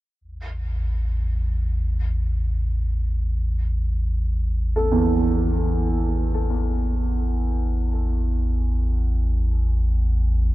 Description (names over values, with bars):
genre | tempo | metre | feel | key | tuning
dark ambient drone | free time | none | none | unclear | A4 = 439 Hz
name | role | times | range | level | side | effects
deep rumbling drone | drone | 0.3-10.5 s | A1 to E2 | -21 LUFS | equal | built-in reverb, wide subtle chorus
dark baby grand piano | arpeggios | 4.8-10.5 s | E2 to A4 | -25 LUFS | right 2 dB | lush chorus, ping-pong delay
room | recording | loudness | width
light reverb, small room ambience | cassette tape | -20 LUFS | side -17 dB against mid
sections
0.2-10.5 A section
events
none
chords
0.2 A5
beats
free time